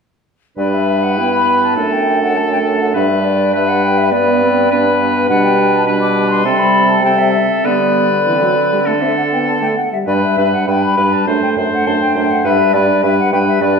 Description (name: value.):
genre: quick classical-period movement for wind quintet.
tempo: 102 BPM.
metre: 4/4.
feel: rubato.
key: G major.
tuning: A4 = 440 Hz.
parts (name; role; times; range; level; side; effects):
silver concert flute; melody; 0.6-13.8 s; D5 to D6; -16 LUFS; left 2 dB; none.
clear oboe; second line; 0.6-13.8 s; A4 to C5; -18 LUFS; left 2 dB; none.
bright clarinet; accompaniment; 0.6-13.8 s; B3 to E4; -20 LUFS; right 6 dB; none.
warm French horn; accompaniment; 0.6-13.8 s; E3 to C4; -19 LUFS; left 1 dB; none.
mellow bassoon; bass; 0.6-13.7 s; F#2 to D3; -20 LUFS; right 2 dB; none.
room: wet recital hall reverb, RT60 1.4 s.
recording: recorded in a church or concert hall.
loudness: -12 LUFS.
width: side -5 dB against mid.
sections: 0.6-13.8 A section.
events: none.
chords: 0.6 G; 1.8 D/F#; 3.0 G; 5.3 G/B; 6.5 Am7/C; 7.7 G/D; 8.9 D5; 10.1 G; 11.3 D7/F#; 12.5 G.